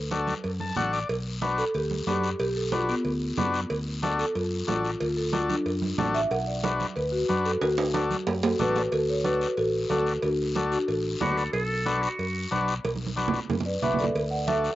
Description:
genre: latin, cumbia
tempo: 184 BPM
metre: 4/4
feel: straight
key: D major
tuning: A4 = 442 Hz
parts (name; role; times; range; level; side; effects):
- marimba with soft mallets; melody; 0.0-11.3, 13.7-14.8 s; B3 to F#5; -28 LUFS; equal; none
- fingered electric bass; bass; 0.0-14.7 s; A1 to F#2; -32 LUFS; equal; none
- overdriven combo organ; accompaniment; 0.1-14.7 s; D4 to A5; -29 LUFS; left 3 dB; slapback echo
- congas; percussion; 0.1-14.6 s; none; -33 LUFS; right 5 dB; none
- guiro; percussion; 0.1-14.8 s; none; -40 LUFS; left 5 dB; none
- cowbell and timbales; percussion; 0.4-14.3 s; none; -31 LUFS; right 3 dB; none
- bright clarinet; second line; 11.2-12.7 s; F#4 to A4; -30 LUFS; right 1 dB; slapback echo
room: little or no reverb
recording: recorded outdoors, with no room sound, nothing above 7.6 kHz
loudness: -24 LUFS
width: side -14 dB against mid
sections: 0.0-8.9 A section; 8.9-14.8 B section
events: marimba solo 0.0-8.9; transistor combo organ fill 0.4-1.1; drum fill 7.6-8.9, 12.8-14.2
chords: 0.0 D; 1.1 Bm; 3.7 D; 6.3 Bm; 7.6 D; 11.5 Bm7; 14.2 Dadd9

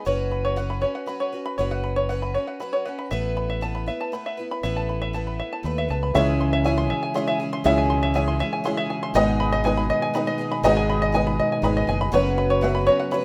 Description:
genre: folk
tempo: 120 BPM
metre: 3/4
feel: straight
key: C# minor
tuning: A4 = 442 Hz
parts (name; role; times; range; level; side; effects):
- picked twelve-string acoustic guitar; accompaniment; 0.0-13.2 s; G#2 to B4; -31 LUFS; equal; plate reverb
- open-back banjo; arpeggios; 0.0-13.2 s; C#5 to B#5; -28 LUFS; equal; none
- fingered electric bass; bass; 0.1-12.9 s; F#1 to D#2; -28 LUFS; equal; none
- dark upright piano; accompaniment; 6.1-13.2 s; F#1 to B5; -27 LUFS; equal; none
- mellow tonewheel organ; sustained chords; 6.1-13.2 s; B2 to F#4; -33 LUFS; equal; slow rotary speaker
room: light reverb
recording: rough home demo mix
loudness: -23 LUFS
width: mono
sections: 0.0-6.1 A section; 6.1-13.2 A section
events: upright piano fill 8.4-9.1, 11.4-12.1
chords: 0.1 F#sus4; 3.1 Asus2; 6.1 C#m; 9.1 G#m; 12.1 F#sus4

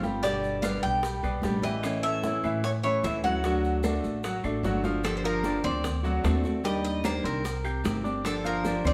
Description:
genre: latin, Cuban son and guajira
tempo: 150 BPM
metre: 4/4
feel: straight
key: unclear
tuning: A4 = 439 Hz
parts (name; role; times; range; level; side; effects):
- Cuban tres; melody; 0.0-8.9 s; A4 to G5; -34 LUFS; equal; none
- nylon-string guitar; accompaniment; 0.0-8.9 s; B2 to G4; -34 LUFS; equal; none
- bright grand piano; arpeggios; 0.0-8.9 s; E3 to G6; -36 LUFS; equal; slapback echo
- upright bass; bass; 0.0-8.9 s; G1 to A2; -34 LUFS; equal; none
- bongos; percussion; 0.0-8.8 s; none; -41 LUFS; equal; none
- congas; percussion; 0.0-8.9 s; none; -38 LUFS; equal; none
- maracas; percussion; 0.0-8.9 s; none; -50 LUFS; equal; none
- claves; percussion; 0.6-8.9 s; none; -47 LUFS; equal; none
room: wet stone room reverb, RT60 1.0 s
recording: band playing live in one room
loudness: -28 LUFS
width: mono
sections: 0.0-5.0 A section; 5.0-8.9 B section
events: none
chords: 0.2 G; 1.8 A; 3.4 D; 5.0 Gm7; 5.8 D7; 6.6 Ebmaj7; 7.4 Cm7; 8.2 Gm7

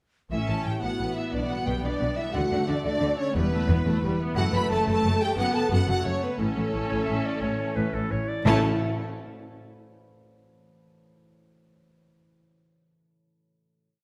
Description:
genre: cinematic, heroic adventure film score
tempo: 118 BPM (dotted quarters)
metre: 12/8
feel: straight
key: A mixolydian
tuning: A4 = 439 Hz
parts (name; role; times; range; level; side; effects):
- rich studio violin section; melody; 0.3-8.7 s; A4 to B5; -38 LUFS; equal; none
- mellow silver concert flute; second line; 0.3-8.6 s; A4 to B5; -36 LUFS; equal; none
- rich chamber violin section; second line; 0.3-8.7 s; A4 to B5; -39 LUFS; equal; none
- rich symphonic viola section; accompaniment; 0.3-8.7 s; G3 to E4; -34 LUFS; equal; none
- mellow French horn section; sustained chords; 0.3-8.6 s; A3 to B4; -34 LUFS; equal; none
- concert harp; arpeggios; 0.3-10.5 s; F#2 to B5; -38 LUFS; equal; none
- rich symphonic cello section; bass; 0.3-8.6 s; E2 to D3; -32 LUFS; equal; none
- rich symphonic double bass section; bass; 0.3-8.6 s; E1 to D2; -34 LUFS; equal; none
- timpani; percussion; 3.4-3.8, 8.5-8.6 s; E2 to A2; -33 LUFS; equal; none
- bright clarinet; second line; 6.9-8.5 s; A4 to E5; -36 LUFS; equal; none
room: moderate scoring stage reverb, RT60 2.0 s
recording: none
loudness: -26 LUFS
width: mono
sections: 0.3-8.5 theme; 8.5-10.5 final chord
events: none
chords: 0.3 A; 1.3 Gadd9/B; 2.4 D; 3.4 Em; 4.4 F#m; 6.4 A

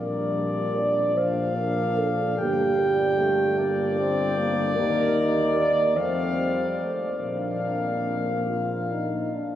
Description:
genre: classical, hymn-like piece for brass band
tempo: 47-51 BPM (dotted quarters)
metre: 6/8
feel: rubato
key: Bb major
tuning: A4 = 440 Hz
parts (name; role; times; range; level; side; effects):
- warm cornet; melody; 0.0-9.4 s; D5 to G5; -28 LUFS; left 3 dB; none
- dark French horn section; second line; 0.0-8.5 s; G4 to D5; -26 LUFS; right 2 dB; none
- mellow trombone; accompaniment; 0.0-9.4 s; F3 to C4; -32 LUFS; right 1 dB; none
- warm euphonium; accompaniment; 0.0-9.6 s; C4 to F4; -31 LUFS; left 2 dB; none
- dark tuba; bass; 0.0-9.4 s; G1 to F2; -30 LUFS; left 1 dB; none
room: wet cathedral reverb, RT60 7.3 s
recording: recorded on a phone in the room, studio reverb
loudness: -22 LUFS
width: side -11 dB against mid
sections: 0.0-9.6 A section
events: none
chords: 0.0 Bb; 2.4 Gm; 4.8 Eb5; 6.0 F; 7.2 Bb

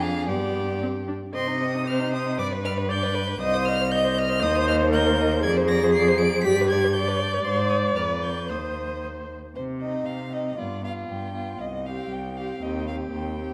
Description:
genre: quick classical-period movement for string quartet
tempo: 117 BPM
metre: 2/4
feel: straight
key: C minor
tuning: A4 = 438 Hz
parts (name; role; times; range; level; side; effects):
- rich violin; melody; 0.0-13.5 s; C5 to D7; -34 LUFS; equal; none
- rich violin; second line; 0.0-13.5 s; C4 to Eb5; -32 LUFS; equal; none
- rich viola; accompaniment; 0.0-13.5 s; B3 to Eb5; -29 LUFS; equal; none
- clear cello; bass; 0.0-13.5 s; C2 to C3; -30 LUFS; equal; none
room: wet recital hall reverb, RT60 1.8 s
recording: none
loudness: -25 LUFS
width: mono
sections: 0.0-1.3 A section; 1.3-9.5 B section; 9.5-13.5 C section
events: none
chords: 0.3 G; 1.3 Cm; 2.4 G; 3.4 Cm; 4.4 Cm/Eb; 5.4 Dm7b5/F; 6.4 G; 7.4 Ab; 8.0 G7/F; 8.5 Cm/Eb; 9.5 Cm; 10.6 G7; 11.6 C5; 12.6 Cm/Eb

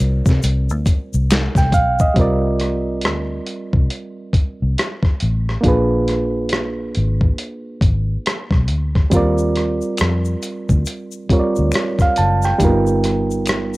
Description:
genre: R&B, neo-soul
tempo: 69 BPM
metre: 4/4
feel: swing 62% on 16ths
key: C minor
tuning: A4 = 443 Hz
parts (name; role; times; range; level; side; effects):
- barky reed electric piano; accompaniment; 0.0-13.8 s; G3 to A5; -20 LUFS; right 2 dB; cassette tape
- vintage muted fingered electric bass; bass; 0.0-13.8 s; F#1 to C3; -19 LUFS; equal; none
- tube shaker and finger snaps; percussion; 0.0-2.1, 9.1-13.8 s; none; -33 LUFS; left 7 dB; none
- dusty soul sampler-style drum kit; drums; 0.3-13.7 s; hi-hat, kick drum, rim click, snare drum; -17 LUFS; equal; cassette tape
room: digital ambience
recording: home recording on cassette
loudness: -15 LUFS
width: side -20 dB against mid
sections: 0.0-2.2 A section; 2.2-13.8 B section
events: none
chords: 0.0 C9sus4; 2.2 C5; 5.6 Bb7b9; 9.1 Ebmaj9; 12.6 G7alt

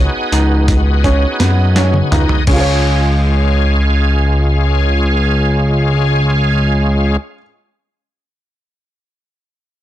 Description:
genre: progressive instrumental, band music in an uneven meter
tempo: 168 BPM (eighths)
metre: 11/8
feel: straight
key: Db mixolydian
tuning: A4 = 440 Hz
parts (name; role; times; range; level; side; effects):
- bright tonewheel organ; accompaniment; 0.0-7.2 s; Ab3 to Ab5; -18 LUFS; left 1 dB; overdrive, chorus vibrato, slow rotary speaker
- smooth synth bass; bass; 0.0-7.2 s; Db2 to Gb2; -12 LUFS; equal; none
- warm grand piano; arpeggios; 0.3-7.4 s; Cb4 to Db5; -20 LUFS; right 2 dB; none
- boom bap sampler-style drum kit; drums; 0.3-2.6 s; crash cymbal, hi-hat, kick drum, snare drum, toms; -17 LUFS; equal; none
room: little or no reverb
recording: blown-out, overdriven recording, overdrive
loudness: -11 LUFS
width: side -13 dB against mid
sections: 0.0-2.5 A section; 2.5-6.4 B section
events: tonewheel organ fill 1.4-2.5; drum fill 1.8-2.5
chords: 0.0 Db7sus4; 2.5 Db

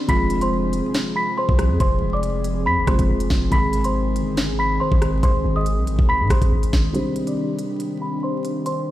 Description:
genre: hip hop, drill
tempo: 140 BPM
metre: 4/4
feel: half-time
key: C harmonic minor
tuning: A4 = 441 Hz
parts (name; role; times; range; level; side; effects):
- small celesta; melody; 0.0-8.9 s; C5 to B6; -25 LUFS; equal; low-pass filter
- felt-muted upright piano; accompaniment; 0.0-8.9 s; C3 to Ab4; -27 LUFS; equal; low-pass filter
- airy breathy pad; sustained chords; 0.0-8.9 s; Eb3 to Ab4; -27 LUFS; equal; chorus, low-pass filter
- long sustained 808-style bass; bass; 0.1-6.9 s; F1 to Ab2; -22 LUFS; equal; none
- drill drum kit; drums; 0.1-8.8 s; hi-hat, kick drum, rim click, snare drum; -20 LUFS; equal; none
room: little or no reverb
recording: played on a big sound system in a bare room, large studio reverb, vinyl crackle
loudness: -18 LUFS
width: side -14 dB against mid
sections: 0.0-6.9 A section; 6.9-8.9 B section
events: filter sweep 6.9-8.9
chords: 0.1 Fm; 3.5 Ab; 6.9 Cmadd9

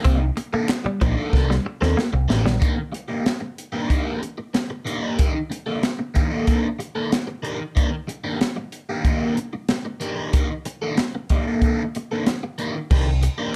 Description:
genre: funk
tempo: 93 BPM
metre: 4/4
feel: straight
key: unclear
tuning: A4 = 440 Hz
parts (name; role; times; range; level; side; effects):
- crunchy overdriven guitar; accompaniment; 0.0-13.5 s; Eb3 to A4; -28 LUFS; equal; phaser
- clean electric guitar; riff; 0.0-2.6 s; F3 to C4; -29 LUFS; equal; none
- crisp fusion drum kit; drums; 0.0-13.4 s; crash cymbal, handclaps, hi-hat, kick drum, snare drum; -24 LUFS; equal; none
- picked electric bass with an envelope filter; bass; 0.1-2.6, 12.9-13.3 s; A1 to Eb2; -23 LUFS; equal; none
room: moderate club reverb, RT60 0.7 s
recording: dark, warm production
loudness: -23 LUFS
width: mono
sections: 0.0-2.6 A section; 2.6-12.9 B section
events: drum fill 1.3-2.6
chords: 0.0 Cm9; 2.6 Ebmaj7#11; 12.9 Cm9

